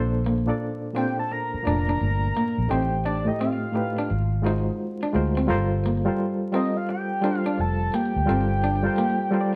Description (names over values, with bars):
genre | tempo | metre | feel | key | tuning
R&B | 86 BPM | 4/4 | swing 64% on 16ths | G minor | A4 = 440 Hz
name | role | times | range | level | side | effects
barky reed electric piano | accompaniment | 0.0-9.6 s | A2 to Eb5 | -28 LUFS | equal | overdrive, fast tremolo
vintage muted fingered electric bass | bass | 0.0-8.9 s | F1 to D2 | -28 LUFS | equal | none
electric guitar at the edge of break-up | second line | 0.3-9.4 s | Bb3 to Eb4 | -31 LUFS | equal | slapback echo
fat analog lead | melody | 1.0-9.6 s | D5 to Bb5 | -31 LUFS | equal | chorus
room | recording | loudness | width
moderate stone room reverb, RT60 1.1 s | band playing live in one room, vinyl crackle | -24 LUFS | mono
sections
0.0-9.6 A section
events
none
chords
0.0 Bbmaj7; 2.7 Am7b5; 4.1 Ab13; 5.5 Gm11